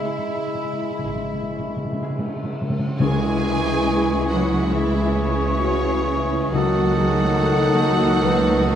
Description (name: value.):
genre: classical, slow romantic movement for symphony orchestra.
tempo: 59-73 BPM.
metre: 4/4.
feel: rubato.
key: C# minor.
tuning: A4 = 440 Hz.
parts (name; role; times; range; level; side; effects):
mellow oboe; second line; 0.0-8.8 s; G#4 to E5; -31 LUFS; right 1 dB; none.
mellow silver concert flute; second line; 0.0-8.8 s; E5 to D#6; -30 LUFS; left 1 dB; none.
rich studio violin section; second line; 0.0-8.8 s; C#4 to G#4; -31 LUFS; equal; none.
mellow bassoon; accompaniment; 0.0-8.8 s; D#3 to G#3; -28 LUFS; right 2 dB; none.
rich symphonic viola section; accompaniment; 0.0-8.8 s; G#3 to E4; -27 LUFS; equal; none.
dark French horn section; sustained chords; 0.0-8.8 s; G#3 to B4; -26 LUFS; left 1 dB; none.
concert harp; arpeggios; 0.0-8.8 s; C#3 to E5; -30 LUFS; left 5 dB; none.
timpani; percussion; 0.0-7.8 s; C#3; -27 LUFS; equal; none.
warm symphonic violin section; melody; 0.1-8.8 s; C#5 to G#5; -30 LUFS; equal; none.
rich symphonic cello section; bass; 1.1-8.8 s; G#2 to G#3; -26 LUFS; right 2 dB; none.
rich symphonic double bass section; bass; 1.1-8.8 s; G#1 to C#2; -26 LUFS; right 1 dB; none.
tam-tam; percussion; 3.0-6.5 s; none; -33 LUFS; left 3 dB; none.
room: wet stone room reverb, RT60 1.1 s.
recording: dark, warm production.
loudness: -18 LUFS.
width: side -9 dB against mid.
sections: 0.0-3.0 A section; 3.0-8.8 A section.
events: timpani fill 0.0-3.0; band accent 3.0-3.9.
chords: 0.0 C#m; 6.5 D#m7b5/C#.